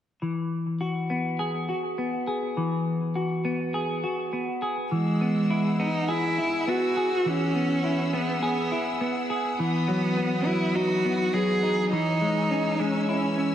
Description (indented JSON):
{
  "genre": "rock",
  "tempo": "103 BPM",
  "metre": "4/4",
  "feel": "straight",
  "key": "E major",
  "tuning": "A4 = 442 Hz",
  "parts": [
    { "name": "semi-hollow electric guitar", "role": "arpeggios", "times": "0.2-13.5 s", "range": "E3 to G#4", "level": "-26 LUFS", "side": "left 1 dB", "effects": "lush chorus, analog delay" },
    { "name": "rich cello", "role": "melody", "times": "4.9-13.5 s", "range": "G#3 to G#4", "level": "-26 LUFS", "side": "right 1 dB", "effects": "analog delay" },
    { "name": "rich symphonic string section", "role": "sustained chords", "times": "4.9-13.5 s", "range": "E3 to E6", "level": "-34 LUFS", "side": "left 1 dB", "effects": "none" }
  ],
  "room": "moderate plate reverb, RT60 2.7 s",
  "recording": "dreamy mix soaked in reverb",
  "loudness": "-24 LUFS",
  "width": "side -10 dB against mid",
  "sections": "0.2-4.9 A section; 4.9-13.5 B section",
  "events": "none",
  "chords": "0.2 Eadd9; 9.6 B/E; 11.9 C#m/E",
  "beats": "| 0.21 0.80 1.39 1.98 | 2.57 3.15 3.74 4.33 | 4.91 5.50 6.08 6.67 | 7.25 7.84 8.42 9.01 | 9.59 10.17 10.76 11.34 | 11.92 12.51 13.09"
}